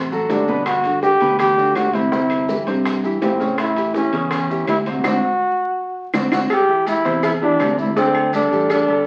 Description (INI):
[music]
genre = latin, salsa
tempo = 164 BPM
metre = 4/4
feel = straight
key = unclear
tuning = A4 = 439 Hz
[part]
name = clear baby grand piano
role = accompaniment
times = 0.0-9.1 s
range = B2 to D5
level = -24 LUFS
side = equal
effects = none
[part]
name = fingered electric bass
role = bass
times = 0.0-9.0 s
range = G1 to A2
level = -30 LUFS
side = equal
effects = none
[part]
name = congas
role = percussion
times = 0.1-9.1 s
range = none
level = -33 LUFS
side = equal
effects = none
[part]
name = maracas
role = percussion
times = 0.1-8.9 s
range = none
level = -42 LUFS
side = equal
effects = none
[part]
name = bright trombone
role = melody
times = 0.3-9.0 s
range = C4 to G4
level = -20 LUFS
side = equal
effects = none
[part]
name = bongos and cowbell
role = percussion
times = 0.3-8.9 s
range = none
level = -29 LUFS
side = equal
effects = none
[part]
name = timbales and agogo bells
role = percussion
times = 0.3-9.1 s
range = none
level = -32 LUFS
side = equal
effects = none
[part]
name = claves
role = percussion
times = 0.7-8.9 s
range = none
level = -32 LUFS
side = equal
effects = none
[sound]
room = moderate studio reverb, RT60 0.8 s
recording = very old 78 rpm record, vinyl crackle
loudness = -18 LUFS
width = mono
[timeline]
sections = 0.0-6.5 A section; 6.5-9.1 B section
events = band accent 5.0-6.5; drum fill 5.8-6.5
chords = 0.0 D; 0.7 Gmaj7; 2.1 C/G; 3.6 A7; 5.0 D7; 6.5 D9sus4; 8.0 D7sus4